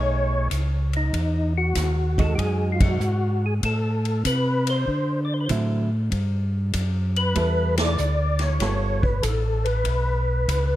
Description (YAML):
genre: soul jazz organ trio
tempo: 96 BPM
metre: 4/4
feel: swing 68% on 8ths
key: unclear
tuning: A4 = 440 Hz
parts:
  - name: percussive tonewheel organ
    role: melody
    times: 0.0-10.8 s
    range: D#4 to D5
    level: -26 LUFS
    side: left 1 dB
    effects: slow rotary speaker, chorus vibrato
  - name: hollow-body jazz guitar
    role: accompaniment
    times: 0.0-9.0 s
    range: D3 to A4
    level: -29 LUFS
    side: right 4 dB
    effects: none
  - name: mellow tonewheel organ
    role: bass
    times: 0.0-10.8 s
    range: G1 to D3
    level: -23 LUFS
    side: equal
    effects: slow rotary speaker
  - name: swinging big-band drum kit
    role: drums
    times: 0.5-10.7 s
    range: hi-hat, kick drum, ride cymbal, snare drum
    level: -28 LUFS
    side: equal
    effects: none
room: small room ambience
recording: rough home demo mix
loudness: -20 LUFS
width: side -14 dB against mid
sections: 0.0-10.8 A section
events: band accent 2.7-3.0, 7.7-8.0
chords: 0.0 B13; 1.1 Emaj9; 3.6 Am; 4.9 D9; 6.1 G69; 8.6 G9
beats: 0.51 | 1.13 1.76 2.38 3.01 | 3.63 4.25 4.88 5.50 | 6.12 6.75 7.37 8.00 | 8.62 9.24 9.87 10.49